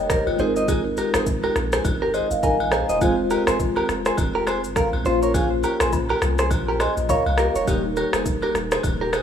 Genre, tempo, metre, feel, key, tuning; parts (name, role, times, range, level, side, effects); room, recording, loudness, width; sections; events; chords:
afrobeats; 103 BPM; 4/4; swing 58% on 16ths; Ab major; A4 = 439 Hz
mellow tine electric piano; accompaniment; 0.0-9.2 s; G3 to Bb5; -24 LUFS; left 1 dB; medium stereo tremolo
punchy sub bass; bass; 0.0-9.2 s; Eb1 to C2; -28 LUFS; equal
direct-recorded clean electric guitar; riff; 0.1-9.2 s; Eb4 to Eb5; -24 LUFS; right 2 dB; digital delay
afro-pop drum kit; drums; 0.1-9.2 s; kick drum, rim click, shaker; -25 LUFS; left 1 dB
agogo bells and woodblock; percussion; 0.3-9.2 s; -34 LUFS; left 2 dB
light reverb, small room ambience; rough home demo mix; -19 LUFS; side -8 dB against mid
0.0-9.2 A section
tine electric piano fill 1.9-3.0, 6.5-7.7
0.4 Abadd9; 3.0 Fm; 5.1 Bbmadd9; 7.7 Eb